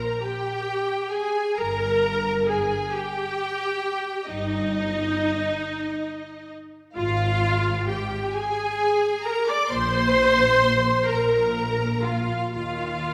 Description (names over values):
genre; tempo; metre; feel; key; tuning
classical, slow romantic movement for string orchestra; 44 BPM (dotted quarters); 12/8; rubato; Eb major; A4 = 440 Hz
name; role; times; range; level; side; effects
clear studio violin section; melody; 0.0-13.1 s; Eb5 to D6; -36 LUFS; equal; none
rich studio violin section; second line; 0.0-13.1 s; Eb5 to D6; -35 LUFS; equal; none
clear symphonic viola section; accompaniment; 0.0-13.1 s; Eb4 to D5; -26 LUFS; equal; none
rich symphonic cello section; bass; 1.6-13.1 s; G2 to Eb3; -33 LUFS; equal; none
rich symphonic double bass section; bass; 1.6-13.1 s; G1 to Eb2; -34 LUFS; equal; none
room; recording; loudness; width
moderate concert hall reverb, RT60 2.1 s; none; -24 LUFS; mono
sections
0.0-13.1 A section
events
none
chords
0.0 Eb (rootless); 1.6 Eb/G; 7.0 Fmadd9/Ab; 9.7 Bb5; 12.6 Eb5